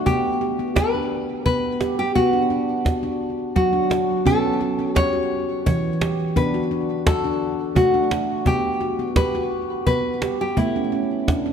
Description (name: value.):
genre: world meditative, meditative tuned percussion.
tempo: 86 BPM.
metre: 3/4.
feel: straight.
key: unclear.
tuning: A4 = 440 Hz.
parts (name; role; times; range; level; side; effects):
nylon-string guitar; melody; 0.0-11.5 s; E4 to C#5; -23 LUFS; left 1 dB; ping-pong delay.
handpan; arpeggios; 0.0-11.5 s; E3 to G4; -22 LUFS; equal; ping-pong delay.
cajon; percussion; 0.1-11.4 s; none; -24 LUFS; right 1 dB; none.
room: wet echo chamber reverb, RT60 2.2 s.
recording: none.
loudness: -19 LUFS.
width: side -7 dB against mid.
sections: 0.0-11.5 A section.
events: none.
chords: 0.1 G/B; 2.2 Bm (rootless); 4.3 A/B; 6.4 D/B; 8.5 Gmaj7/B; 10.6 A.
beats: | 0.07 0.77 1.46 | 2.16 2.86 3.56 | 4.26 4.96 5.66 | 6.36 7.06 7.76 | 8.47 9.17 9.87 | 10.58 11.28.